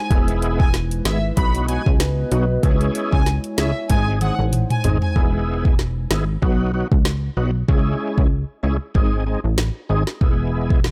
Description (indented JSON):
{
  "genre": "dancehall",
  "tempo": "95 BPM",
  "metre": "4/4",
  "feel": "swing 56% on 16ths",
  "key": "unclear",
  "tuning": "A4 = 442 Hz",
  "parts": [
    { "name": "warm studio violin section", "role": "melody", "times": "0.0-5.1 s", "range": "E5 to B5", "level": "-30 LUFS", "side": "equal", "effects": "tape echo" },
    { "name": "glass harmonica", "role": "sustained chords", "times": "0.0-5.1 s", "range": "G#3 to D#5", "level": "-33 LUFS", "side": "equal", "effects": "sidechain pumping" },
    { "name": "overdriven tonewheel organ", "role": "accompaniment", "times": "0.1-10.8 s", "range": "F#3 to G#4", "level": "-28 LUFS", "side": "equal", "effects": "chorus vibrato, slow rotary speaker" },
    { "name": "plucky analog bass", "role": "bass", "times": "0.1-10.9 s", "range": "E1 to C#2", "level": "-23 LUFS", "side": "equal", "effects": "none" },
    { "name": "afro-pop drum kit", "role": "drums", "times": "0.1-10.9 s", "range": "hi-hat, kick drum, rim click, snare drum, toms", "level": "-21 LUFS", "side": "equal", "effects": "none" },
    { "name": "hollow clarinet-like synth lead", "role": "second line", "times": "2.0-2.9 s", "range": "B4", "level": "-31 LUFS", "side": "equal", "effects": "chorus, tape echo" }
  ],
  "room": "little or no reverb",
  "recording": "none",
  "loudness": "-20 LUFS",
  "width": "mono",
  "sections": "0.0-5.2 A section; 5.2-10.9 B section",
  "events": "drum fill 3.9-5.2",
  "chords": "0.1 E; 1.4 B; 2.6 C#m; 3.9 G#; 5.2 E; 6.4 B; 7.7 C#m; 8.9 G#; 10.2 E"
}